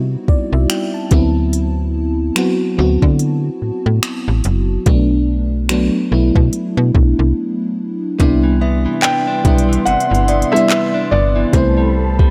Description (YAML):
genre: contemporary R&B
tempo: 72 BPM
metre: 4/4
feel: swing 58% on 16ths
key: unclear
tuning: A4 = 440 Hz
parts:
  - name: FM electric piano with soft pad layer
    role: accompaniment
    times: 0.0-12.3 s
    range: F#3 to A5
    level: -20 LUFS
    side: equal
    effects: chorus, tremolo
  - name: slap-like FM bass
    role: bass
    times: 0.0-12.2 s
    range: F#1 to D3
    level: -18 LUFS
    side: equal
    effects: none
  - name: smooth R&B drum kit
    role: drums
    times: 0.3-12.3 s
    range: finger snaps, handclaps, hi-hat, kick drum, rim click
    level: -18 LUFS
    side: equal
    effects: none
  - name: warm analog pad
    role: sustained chords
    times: 8.2-12.3 s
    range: B3 to C6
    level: -27 LUFS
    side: equal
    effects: chorus
  - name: direct-recorded clean electric guitar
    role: arpeggios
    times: 8.2-12.3 s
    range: C3 to D4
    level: -25 LUFS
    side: equal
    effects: none
  - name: synth chime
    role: texture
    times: 8.6-11.9 s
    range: D5 to E5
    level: -30 LUFS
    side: equal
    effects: none
  - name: warm concert grand piano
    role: melody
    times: 9.0-12.3 s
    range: C5 to G5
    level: -20 LUFS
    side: equal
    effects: digital delay
room: light reverb, digital ambience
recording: none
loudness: -15 LUFS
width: mono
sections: 0.0-8.2 A section; 8.2-12.3 B section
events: FM electric piano fill 0.0-1.5; break 7.4-8.2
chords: 0.0 Cmaj9#11; 1.1 D13; 4.9 Bm7; 8.2 Cmaj9; 11.5 Am9